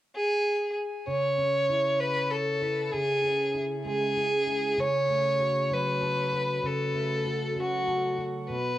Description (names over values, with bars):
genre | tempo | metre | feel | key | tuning
pop | 65 BPM (dotted quarters) | 6/8 | straight | C# minor | A4 = 441 Hz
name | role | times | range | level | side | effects
rich violin | melody | 0.2-8.8 s | F#4 to C#5 | -26 LUFS | equal | analog delay
fingerpicked plugged-in steel-string acoustic guitar | accompaniment | 1.1-8.8 s | B2 to A4 | -32 LUFS | equal | double-tracked left and right
room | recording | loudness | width
wet studio reverb, RT60 0.5 s | home recording on cassette | -25 LUFS | side -14 dB against mid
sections
0.0-1.1 A section; 1.1-8.8 B section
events
none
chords
0.0 N.C.; 1.1 C#m; 4.8 F#m/C#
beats
0.15 | 1.08 2.00 | 2.93 3.86 | 4.78 5.71 | 6.64 7.56 | 8.49